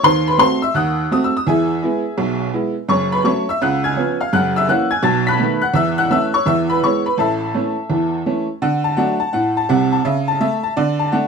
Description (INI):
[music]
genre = jazz, stride piano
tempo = 168 BPM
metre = 4/4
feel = swing 63% on 8ths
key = A major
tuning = A4 = 441 Hz
[part]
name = tack piano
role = solo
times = 0.0-11.3 s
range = F#1 to B6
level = -15 LUFS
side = equal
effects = none
[sound]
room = moderate studio reverb, RT60 0.7 s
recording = dark, warm production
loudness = -15 LUFS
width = side -5 dB against mid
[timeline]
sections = 0.0-8.6 A section; 8.6-11.3 B section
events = none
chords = 0.0 D#dim7; 1.5 E; 2.9 F#m; 3.6 C#7; 4.3 F#7; 5.0 B7; 5.8 A/E; 6.5 E; 7.2 A; 8.6 D; 10.1 A/C#; 10.8 D